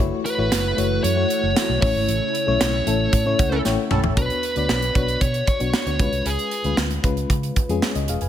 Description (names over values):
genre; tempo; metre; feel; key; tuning
1980s-style pop; 115 BPM; 4/4; straight; B minor; A4 = 440 Hz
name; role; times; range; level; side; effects
FM electric piano with tremolo; accompaniment; 0.0-8.3 s; G#3 to A5; -25 LUFS; left 6 dB; none
ensemble organ-string; sustained chords; 0.0-4.1 s; C#3 to F#4; -29 LUFS; right 1 dB; phaser, ensemble chorus
vintage muted fingered electric bass; bass; 0.0-8.3 s; E1 to C#3; -24 LUFS; right 1 dB; none
fuzz lead guitar; melody; 0.3-6.7 s; G#4 to C#5; -24 LUFS; right 1 dB; distortion
modern studio drum kit; drums; 0.3-8.3 s; hi-hat, kick drum, snare drum, toms; -23 LUFS; right 1 dB; gated reverb
tambourine; percussion; 0.5-3.8 s; none; -38 LUFS; right 9 dB; none
funky polysynth comp; stabs; 3.5-4.1 s; C#4 to A4; -29 LUFS; right 6 dB; chorus, digital delay
room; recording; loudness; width
studio ambience; none; -18 LUFS; side -10 dB against mid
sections
0.0-4.2 A section; 4.2-8.3 B section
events
band accent 2.1-4.2; FM electric piano fill 3.1-4.2; drum fill 3.6-4.2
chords
0.0 F#m7; 1.8 A; 4.2 Bmadd9; 6.0 C#7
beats
| 0.00 0.52 1.04 1.56 | 2.08 2.60 3.13 3.65 | 4.17 4.69 5.21 5.74 | 6.26 6.78 7.30 7.82